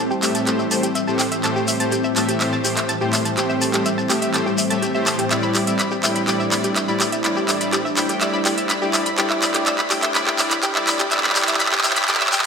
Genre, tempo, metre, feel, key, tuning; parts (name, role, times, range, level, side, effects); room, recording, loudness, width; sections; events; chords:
progressive house; 124 BPM; 4/4; straight; A minor; A4 = 440 Hz
shimmering ambient pad; sustained chords; 0.0-12.5 s; A2 to C5; -25 LUFS; equal; chorus, built-in reverb
analog pluck; arpeggios; 0.0-12.4 s; G4 to B5; -24 LUFS; equal; chorus, ping-pong delay
shekere; percussion; 0.1-12.5 s; -28 LUFS; left 4 dB
soft supersaw; stabs; 0.2-12.2 s; A2 to G5; -23 LUFS; left 1 dB; ping-pong delay
house drum kit; drums; 0.2-12.5 s; handclaps, hi-hat; -21 LUFS; right 1 dB
swell; sound effects; 12.3-12.5 s; -46 LUFS; right 1 dB
wet lush hall reverb, RT60 2.5 s; high-pass filter; -17 LUFS; side -6 dB against mid
0.0-12.5 A section
build-up 0.0-12.5; drum fill 0.0-12.5; filter sweep on synth pluck 0.0-12.5; filter sweep on ambient pad 0.0-12.5; filter sweep 0.0-12.5
0.0 Am7; 5.3 Em7/A